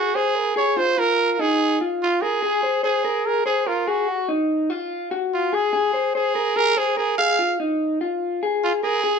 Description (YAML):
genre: indie pop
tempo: 145 BPM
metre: 4/4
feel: straight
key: unclear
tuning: A4 = 440 Hz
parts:
  - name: growling trumpet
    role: melody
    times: 0.0-9.2 s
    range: F4 to F5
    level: -21 LUFS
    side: right 4 dB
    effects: none
  - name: electric guitar through a small old amp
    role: arpeggios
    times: 0.0-9.2 s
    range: Eb4 to C5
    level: -22 LUFS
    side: left 3 dB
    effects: none
room: moderate studio reverb, RT60 0.8 s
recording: band playing live in one room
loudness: -19 LUFS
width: side -6 dB against mid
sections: 0.0-9.2 A section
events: none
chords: 0.0 Ab5; 0.8 Bb5; 2.4 Fmadd11 (rootless); 4.1 Ebmadd9; 5.5 Abadd9; 7.4 Bb5